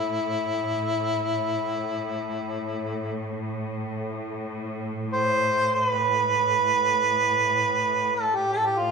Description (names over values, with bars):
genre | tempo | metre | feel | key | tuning
caucasian folk, Caucasian lament | free time | none | none | A minor | A4 = 438 Hz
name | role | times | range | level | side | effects
mellow harmonica | melody | 0.0-8.9 s | E4 to C5 | -22 LUFS | right 2 dB | none
bright studio cello section | drone | 0.0-8.9 s | A2 | -31 LUFS | equal | none
room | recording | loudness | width
moderate scoring stage reverb, RT60 1.6 s | minimal, uncompressed stereo recording | -23 LUFS | side -5 dB against mid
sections
0.0-8.9 A section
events
none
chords
none